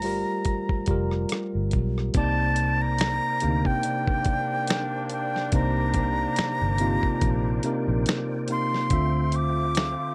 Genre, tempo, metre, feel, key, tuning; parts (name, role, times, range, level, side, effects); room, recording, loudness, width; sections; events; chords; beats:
R&B, neo-soul; 71 BPM; 4/4; swing 54% on 16ths; C dorian; A4 = 439 Hz
breathy bright concert flute; melody; 0.0-10.1 s; G5 to D6; -30 LUFS; equal
tine electric piano; accompaniment; 0.0-10.1 s; C3 to F5; -31 LUFS; equal
vintage muted fingered electric bass; bass; 0.0-9.9 s; F1 to C3; -29 LUFS; equal
dusty soul sampler-style drum kit; drums; 0.0-10.0 s; finger snaps, hi-hat, kick drum, rim click, snare drum; -29 LUFS; equal
percussive tonewheel organ; sustained chords; 2.2-10.1 s; F4 to G5; -42 LUFS; equal; slow rotary speaker, overdrive, chorus vibrato
mellow horn section; stabs; 3.8-10.1 s; G3 to F4; -38 LUFS; equal
light reverb; dark, warm production; -25 LUFS; mono
0.0-2.1 A section; 2.1-10.1 B section
0.0 Gm9; 2.1 Cm9; 8.9 Dm9
0.46 1.30 | 2.15 2.99 3.84 4.68 | 5.53 6.37 7.22 8.06 | 8.91 9.75